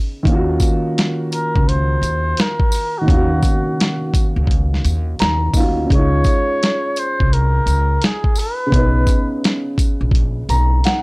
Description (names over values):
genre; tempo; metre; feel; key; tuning
lo-fi hip hop; 85 BPM; 4/4; swing 64% on 16ths; unclear; A4 = 444 Hz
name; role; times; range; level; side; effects
dark upright piano; accompaniment; 0.0-11.0 s; C#3 to Bb5; -21 LUFS; equal; cassette tape, low-pass filter
upright bass; bass; 0.3-10.8 s; A#1 to Eb2; -18 LUFS; equal; transformer saturation
lo-fi sampler-style drum kit; drums; 0.3-11.0 s; hi-hat, kick drum, snare drum; -17 LUFS; equal; none
tambourine; percussion; 0.6-10.7 s; none; -31 LUFS; left 1 dB; none
breathy flugelhorn; melody; 1.3-9.4 s; Gb4 to Db5; -21 LUFS; equal; low-pass filter
room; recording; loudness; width
light reverb; dry, gritty hardware recording; -14 LUFS; side -26 dB against mid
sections
0.0-11.0 A section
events
upright piano fill 4.8-5.9, 10.1-11.0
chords
0.3 Ebm9; 5.9 Dbmaj7; 8.7 Bmaj9